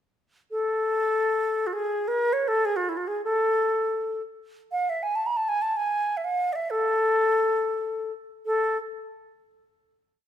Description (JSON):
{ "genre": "Persian modal ensemble", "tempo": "free time", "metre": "none", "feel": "none", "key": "A dastgah chahargah", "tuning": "A4 = 440 Hz", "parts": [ { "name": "bright baroque flute", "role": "solo", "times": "0.5-8.8 s", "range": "E4 to B5-49c", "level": "-23 LUFS", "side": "left 1 dB", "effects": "none" } ], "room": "moderate recital hall reverb, RT60 1.7 s", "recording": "minimal, uncompressed stereo recording", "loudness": "-23 LUFS", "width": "side -10 dB against mid", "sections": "0.2-8.5 free-time section; 8.5-10.3 final note", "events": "none", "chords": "none", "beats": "free time" }